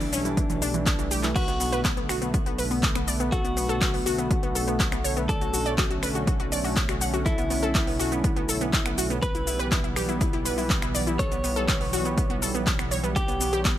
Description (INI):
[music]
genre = progressive house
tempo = 122 BPM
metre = 4/4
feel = straight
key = B minor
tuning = A4 = 437 Hz
[part]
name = direct-recorded clean electric guitar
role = melody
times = 0.0-13.6 s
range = D4 to C#5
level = -31 LUFS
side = equal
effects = ping-pong delay
[part]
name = warm analog pad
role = sustained chords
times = 0.0-13.8 s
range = D3 to C#5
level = -32 LUFS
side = right 1 dB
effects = chorus, sidechain pumping
[part]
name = glassy wavetable pluck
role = arpeggios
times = 0.0-13.7 s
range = E3 to F#5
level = -30 LUFS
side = equal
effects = chorus, sidechain pumping, ping-pong delay
[part]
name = dark detuned saw bass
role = bass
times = 0.0-13.8 s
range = B1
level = -32 LUFS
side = equal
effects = sidechain pumping
[part]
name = deep house drum kit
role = drums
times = 0.0-13.8 s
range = crash cymbal, finger snaps, handclaps, hi-hat, shaker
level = -29 LUFS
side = left 1 dB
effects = sidechain pumping on hats, sidechain pumping on perc, sidechain pumping on cymbals
[part]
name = electronic kick drum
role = drums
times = 0.4-13.8 s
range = none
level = -26 LUFS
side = equal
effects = overdrive
[sound]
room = little or no reverb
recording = none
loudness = -22 LUFS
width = side -12 dB against mid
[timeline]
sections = 0.0-13.8 A section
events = drum fill 0.9-1.4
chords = 0.0 Em/B; 1.4 Bm7; 9.2 Em/B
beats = 0.37 0.86 | 1.36 1.85 2.34 2.83 | 3.32 3.81 4.31 4.80 | 5.29 5.78 6.27 6.77 | 7.26 7.75 8.24 8.73 | 9.22 9.72 10.21 10.70 | 11.19 11.68 12.18 12.67 | 13.16 13.65